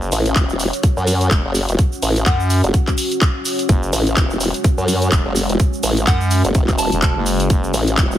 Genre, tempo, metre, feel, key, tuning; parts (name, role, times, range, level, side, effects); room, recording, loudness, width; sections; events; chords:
bass house; 126 BPM; 4/4; swing 58% on 16ths; F# minor; A4 = 439 Hz
deep dark ambient pad; sustained chords; 0.0-8.2 s; G#3 to C#5; -24 LUFS; left 2 dB; chorus, built-in reverb, sidechain pumping
growling FM bass; bass; 0.0-7.7 s; E1 to F#2; -18 LUFS; equal; overdrive, sidechain pumping
house drum kit; drums; 0.0-8.2 s; cabasa, handclaps, hi-hat; -22 LUFS; equal; studio reverb
formant-sweep wobble bass; bass; 0.1-8.2 s; E1 to F#2; -18 LUFS; equal; chorus, tube saturation, sidechain pumping
electronic kick drum; drums; 0.4-8.1 s; -16 LUFS; equal; studio reverb
soft synth bell; melody; 2.3-2.5, 6.1-7.2 s; F#5 to A5; -26 LUFS; right 1 dB; chorus, phaser, vintage 12-bit sampler grit, digital delay
little or no reverb; heavily compressed radio sound, multiband compression; -14 LUFS; side -12 dB against mid
0.0-8.2 A section
0.0 F#5